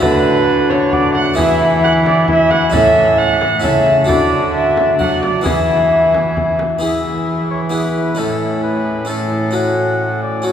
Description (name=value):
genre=classical, renaissance-style consort dance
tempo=132 BPM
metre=3/4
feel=straight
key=E mixolydian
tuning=A4 = 437 Hz
part: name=clear oboe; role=melody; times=0.0-10.5 s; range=A4 to A5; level=-25 LUFS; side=left 3 dB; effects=none
part: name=dark viola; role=second line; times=0.0-10.5 s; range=E4 to F#5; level=-16 LUFS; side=right 1 dB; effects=none
part: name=harpsichord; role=accompaniment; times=0.0-10.5 s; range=A2 to A4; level=-21 LUFS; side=equal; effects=none
part: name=warm bassoon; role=accompaniment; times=0.0-10.5 s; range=C#4 to F#4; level=-20 LUFS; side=left 2 dB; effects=none
part: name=rich cello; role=bass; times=0.0-10.5 s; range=A2 to F#3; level=-19 LUFS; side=right 1 dB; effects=none
part: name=frame drum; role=percussion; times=0.0-6.8 s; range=none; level=-24 LUFS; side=left 1 dB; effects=none
room=wet cathedral reverb, RT60 6.1 s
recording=recorded in a church or concert hall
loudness=-12 LUFS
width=side -9 dB against mid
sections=0.0-6.8 A section; 6.8-10.5 B section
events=none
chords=0.0 D; 1.4 E; 2.7 A; 4.1 D; 5.5 E; 8.2 A; 9.6 F#m/A